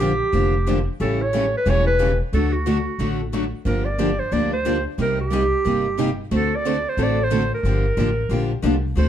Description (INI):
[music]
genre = acoustic string swing (jazz manouche)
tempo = 181 BPM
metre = 4/4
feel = swing 60% on 8ths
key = G minor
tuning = A4 = 441 Hz
[part]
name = breathy clarinet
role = melody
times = 0.0-9.1 s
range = F#4 to D5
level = -23 LUFS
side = right 2 dB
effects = plate reverb
[part]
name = picked steel-string acoustic guitar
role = accompaniment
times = 0.0-9.1 s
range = C3 to A4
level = -26 LUFS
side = left 4 dB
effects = none
[part]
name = picked steel-string acoustic guitar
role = accompaniment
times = 0.0-9.1 s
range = C3 to A4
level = -26 LUFS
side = right 4 dB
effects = none
[part]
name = upright bass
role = bass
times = 0.0-9.1 s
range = E1 to D2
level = -23 LUFS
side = left 1 dB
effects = none
[sound]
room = moderate studio reverb, RT60 0.8 s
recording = dark, warm production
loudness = -18 LUFS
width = side -10 dB against mid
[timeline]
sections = 0.0-9.0 A section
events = none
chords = 0.0 Bb6; 1.0 A7; 2.3 D; 3.6 Gm7; 5.0 Cm7; 6.3 D7; 7.6 Gm7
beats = 0.00 0.33 0.66 | 0.99 1.33 1.66 1.99 | 2.32 2.65 2.99 3.32 | 3.65 3.98 4.31 4.65 | 4.98 5.31 5.64 5.97 | 6.31 6.64 6.97 7.30 | 7.63 7.96 8.30 8.63 | 8.96